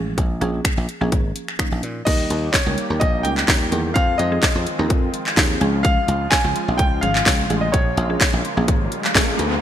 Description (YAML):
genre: dance-pop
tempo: 127 BPM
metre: 4/4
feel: straight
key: Bb dorian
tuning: A4 = 440 Hz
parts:
  - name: mallet-like synth pluck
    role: accompaniment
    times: 0.0-9.5 s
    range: F3 to Bb4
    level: -27 LUFS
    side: right 1 dB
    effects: chorus, sidechain pumping
  - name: dry thumbed slap bass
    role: bass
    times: 0.0-9.6 s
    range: Ab1 to Bb2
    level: -23 LUFS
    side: equal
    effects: sidechain pumping
  - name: house drum kit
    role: drums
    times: 0.2-9.5 s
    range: crash cymbal, finger snaps, handclaps, hi-hat, kick drum, snare drum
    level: -19 LUFS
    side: equal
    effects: none
  - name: clear baby grand piano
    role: melody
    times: 2.1-9.1 s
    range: Db5 to Ab5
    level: -24 LUFS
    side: left 1 dB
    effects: none
  - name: soft supersaw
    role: sustained chords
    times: 2.1-9.6 s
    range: Db3 to G4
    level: -29 LUFS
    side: equal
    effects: wide subtle chorus, sidechain pumping
  - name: riser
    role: sound effects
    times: 8.5-9.6 s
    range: none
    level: -27 LUFS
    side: equal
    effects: none
room: light reverb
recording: bright 1980s-style digital production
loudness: -17 LUFS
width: side -10 dB against mid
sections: 0.0-2.1 A section; 2.1-9.6 B section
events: riser 8.5-9.6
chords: 0.2 Bbm7; 2.1 Eb; 4.0 Fm7; 5.6 Db; 7.7 Bbm7